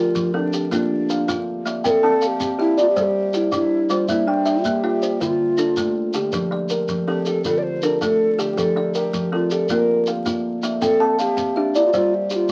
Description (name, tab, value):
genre	southern african traditional, mbira-style interlocking cycle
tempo	107 BPM (dotted quarters)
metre	12/8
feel	straight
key	F major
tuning	A4 = 440 Hz
part	breathy bright round clay ocarina	melody	0.0-12.5 s	D4 to D5	-23 LUFS	equal	none
part	kalimba	arpeggios	0.0-12.5 s	D3 to A5	-26 LUFS	equal	none
part	kalimba	arpeggios	0.0-12.5 s	D3 to G5	-26 LUFS	equal	none
part	shekere	percussion	0.2-12.5 s	none	-34 LUFS	equal	none
room	moderate studio reverb, RT60 0.5 s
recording	very old 78 rpm record, vinyl crackle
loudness	-20 LUFS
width	mono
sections	0.0-12.5 A section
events	none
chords	0.0 F; 0.7 Bb; 1.8 C; 3.0 G5; 4.1 Bb; 5.2 Dm; 6.3 F; 7.5 Dm; 8.6 F; 9.7 Bb5; 10.8 C; 11.9 G5